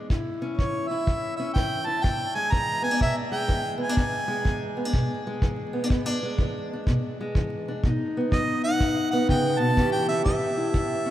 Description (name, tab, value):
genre	acoustic country blues, solo or duo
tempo	124 BPM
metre	4/4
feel	swing 64% on 8ths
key	E mixolydian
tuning	A4 = 441 Hz
part	fingerpicked steel-string acoustic guitar	accompaniment	0.0-11.1 s	E2 to G4	-26 LUFS	equal	none
part	kick drum	drums	0.1-10.9 s	none	-26 LUFS	equal	none
part	clear harmonica	melody	0.6-4.7, 8.3-11.1 s	C#5 to A#5	-28 LUFS	right 1 dB	none
room	wet cathedral reverb, RT60 6.0 s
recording	in a vast, echoing space, vinyl crackle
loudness	-23 LUFS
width	side -12 dB against mid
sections	0.0-11.1 A section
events	none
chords	0.1 A; 2.0 E7; 7.8 B; 9.8 A7